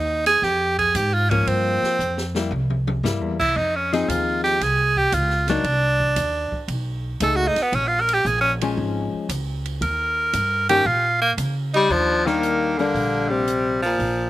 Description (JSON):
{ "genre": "jazz, small-group swing and bop", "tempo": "115 BPM", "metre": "4/4", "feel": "swing 69% on 8ths", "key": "unclear", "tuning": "A4 = 440 Hz", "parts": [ { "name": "edgy tenor saxophone", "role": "second line", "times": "0.0-14.3 s", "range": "F3 to Bb4", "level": "-20 LUFS", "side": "right 2 dB", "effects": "none" }, { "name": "upright bass", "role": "bass", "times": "0.0-14.3 s", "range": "Ab1 to Db3", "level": "-25 LUFS", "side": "equal", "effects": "none" }, { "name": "open jazz drum kit", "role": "drums", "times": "0.3-14.2 s", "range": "crash cymbal, hi-hat, kick drum, ride cymbal, snare drum, toms", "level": "-33 LUFS", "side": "right 1 dB", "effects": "none" }, { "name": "hollow-body jazz guitar", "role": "accompaniment", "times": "1.3-13.4 s", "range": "Eb3 to Ab4", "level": "-25 LUFS", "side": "left 5 dB", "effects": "slapback echo" }, { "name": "mellow baritone saxophone", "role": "melody", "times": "11.8-14.3 s", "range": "Bb2 to G3", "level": "-21 LUFS", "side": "left 3 dB", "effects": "none" } ], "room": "little or no reverb", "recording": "recorded outdoors, with no room sound", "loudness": "-18 LUFS", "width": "side -15 dB against mid", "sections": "0.0-11.9 A section; 11.9-14.3 B section", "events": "tenor saxophone solo 0.0-11.9; drum fill 2.0-3.0", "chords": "0.0 Db (rootless); 1.5 Fsus24; 2.5 C7; 3.6 Fm7; 5.6 Cmadd9; 6.7 B13; 7.7 Bbm7; 9.8 Eb7; 11.9 Ebmaj7", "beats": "0.42 0.95 | 1.47 1.99 2.52 3.04 | 3.56 4.08 4.61 5.13 | 5.65 6.17 6.69 7.21 | 7.73 8.25 8.78 9.30 | 9.82 10.34 10.86 11.38 | 11.90 12.43 12.95 13.47 | 13.99" }